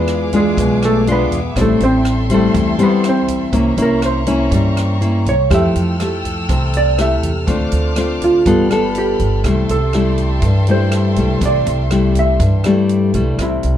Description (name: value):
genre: bossa nova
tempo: 122 BPM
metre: 4/4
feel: straight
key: C major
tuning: A4 = 440 Hz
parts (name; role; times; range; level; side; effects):
- hollow-body jazz guitar; melody; 0.0-13.8 s; G#3 to E5; -18 LUFS; right 2 dB; plate reverb
- nylon-string guitar; accompaniment; 0.0-13.8 s; G2 to A4; -16 LUFS; left 2 dB; none
- warm studio violin section; sustained chords; 0.0-13.4 s; G#4 to F6; -27 LUFS; equal; none
- upright bass; bass; 0.0-13.8 s; G1 to G2; -18 LUFS; equal; none
- open jazz drum kit; drums; 0.1-13.7 s; hi-hat, kick drum, rim click; -24 LUFS; right 1 dB; none
room: light reverb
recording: dark, warm production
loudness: -13 LUFS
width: side -10 dB against mid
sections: 0.0-13.4 A section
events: hollow-body jazz guitar solo 0.0-13.4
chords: 0.0 E7b9; 1.6 Am7; 3.5 C7b9; 5.5 Fmaj9; 7.5 Dm7; 8.5 G9; 9.4 C6